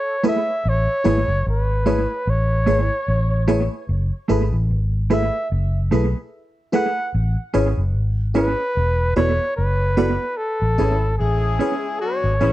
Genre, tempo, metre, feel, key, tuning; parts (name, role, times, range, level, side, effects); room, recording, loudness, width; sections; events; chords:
reggae; 74 BPM; 4/4; swing 55% on 16ths; A major; A4 = 440 Hz
breathy flugelhorn; melody; 0.0-12.5 s; G#4 to F#5; -23 LUFS; equal; tape echo
FM electric piano with soft pad layer; accompaniment; 0.2-12.5 s; E4 to D5; -24 LUFS; left 2 dB; chorus
mellow electric guitar; stabs; 0.2-12.5 s; A3 to D5; -22 LUFS; right 4 dB; slapback echo
vintage muted fingered electric bass; bass; 0.7-12.5 s; E1 to B1; -19 LUFS; equal
mellow horn section; second line; 10.8-12.5 s; E3 to G#4; -28 LUFS; left 8 dB
little or no reverb; dry, close 1970s-style studio recording; -18 LUFS; side -15 dB against mid
0.0-10.4 A section; 10.4-12.5 B section
0.0 F#m11 (rootless); 0.7 Amaj7; 3.9 F#m11; 7.1 Amaj7; 8.8 E7sus4; 10.4 Amaj7